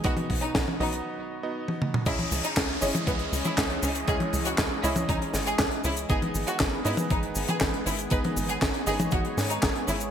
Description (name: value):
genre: italo disco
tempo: 119 BPM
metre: 4/4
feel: straight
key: C# minor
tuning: A4 = 440 Hz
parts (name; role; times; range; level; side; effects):
- clear studio violin section; melody; 0.0-10.0 s; B3 to B4; -32 LUFS; left 1 dB; digital delay
- lush unison pad; sustained chords; 0.0-10.1 s; B2 to D#5; -35 LUFS; equal; chorus
- clear electric grand piano; stabs; 0.0-10.1 s; B3 to D#5; -34 LUFS; right 2 dB; none
- tight sequencer bass; bass; 0.0-10.1 s; G#1 to G#2; -32 LUFS; equal; none
- electronic kick drum; drums; 0.0-9.7 s; none; -29 LUFS; equal; overdrive, small room ambience
- tight funk drum kit; drums; 0.0-10.1 s; cabasa, crash cymbal, handclaps, hi-hat, snare drum, toms; -28 LUFS; left 1 dB; small room ambience, gated reverb
- downlifter; sound effects; 2.1-6.1 s; none; -36 LUFS; equal; none
room: moderate plate reverb, RT60 1.6 s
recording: bright 1980s-style digital production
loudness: -24 LUFS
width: side -9 dB against mid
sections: 0.0-2.1 A section; 2.1-10.1 B section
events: break 1.1-2.1; drum fill 1.7-2.1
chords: 0.0 B; 2.1 C#madd9; 6.1 G#m